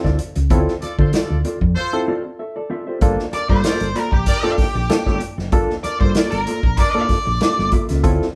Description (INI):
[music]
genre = funk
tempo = 96 BPM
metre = 4/4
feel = straight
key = G dorian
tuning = A4 = 440 Hz
[part]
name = mellow electric guitar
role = accompaniment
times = 0.0-8.2 s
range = Bb3 to E5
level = -29 LUFS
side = equal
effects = vibrato effect
[part]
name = barky reed electric piano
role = stabs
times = 0.0-8.3 s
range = Bb3 to E5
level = -27 LUFS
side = equal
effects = overdrive, fast tremolo
[part]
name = hollow-body short-scale fingered electric bass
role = bass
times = 0.0-8.2 s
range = F#1 to D3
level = -24 LUFS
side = equal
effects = none
[part]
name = vintage drum kit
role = drums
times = 0.0-8.3 s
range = hi-hat, kick drum, snare drum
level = -22 LUFS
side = equal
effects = none
[part]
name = clear horn section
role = second line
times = 0.8-7.0 s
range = D4 to D5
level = -28 LUFS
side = equal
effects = none
[part]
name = octave-fuzz lead guitar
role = melody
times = 3.3-7.7 s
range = G4 to D5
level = -25 LUFS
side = equal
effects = distortion
[sound]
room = moderate studio reverb, RT60 0.9 s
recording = band playing live in one room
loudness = -19 LUFS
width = mono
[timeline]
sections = 0.0-3.0 A section; 3.0-8.4 B section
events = break 1.8-3.0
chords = 0.0 Dm7; 3.0 Gm9